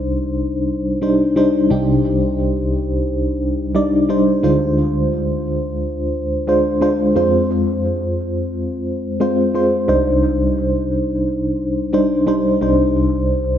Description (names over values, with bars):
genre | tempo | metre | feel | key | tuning
pop | 88 BPM | 4/4 | straight | C minor | A4 = 440 Hz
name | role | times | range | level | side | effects
FM electric piano with tremolo | solo | 0.0-13.6 s | C2 to D5 | -15 LUFS | equal | phaser, tape echo
room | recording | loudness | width
wet plate reverb, RT60 2.8 s | dreamy mix soaked in reverb, nothing above 7.5 kHz | -15 LUFS | side -9 dB against mid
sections
0.0-13.6 A section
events
FM electric piano fill 13.3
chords
0.0 Cmadd9; 4.4 Dm7b5; 7.2 Fm; 9.9 Cmadd9